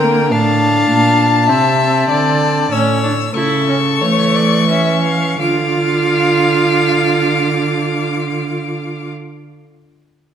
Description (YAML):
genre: classical, baroque-style fugue for string quartet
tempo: 42-52 BPM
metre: 4/4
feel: straight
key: D minor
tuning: A4 = 441 Hz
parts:
  - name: rich violin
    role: melody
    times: 0.0-9.1 s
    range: G5 to E6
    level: -18 LUFS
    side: left 7 dB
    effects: none
  - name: rich violin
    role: second line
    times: 0.0-9.1 s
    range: A4 to F5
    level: -19 LUFS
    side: left 3 dB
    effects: none
  - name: clear viola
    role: accompaniment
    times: 0.0-9.1 s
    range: A3 to F4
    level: -18 LUFS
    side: right 2 dB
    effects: none
  - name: warm cello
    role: bass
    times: 0.0-9.1 s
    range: A2 to E3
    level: -18 LUFS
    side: right 4 dB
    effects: none
room: wet recital hall reverb, RT60 1.6 s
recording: none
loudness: -12 LUFS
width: side -8 dB against mid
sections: 0.0-5.4 A section; 5.4-10.3 B section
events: slowing down 0.0-5.4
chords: 0.3 Dm/A; 2.7 A; 5.4 Dm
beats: | 0.32 1.49 2.72 4.02 | 5.40 6.82 8.24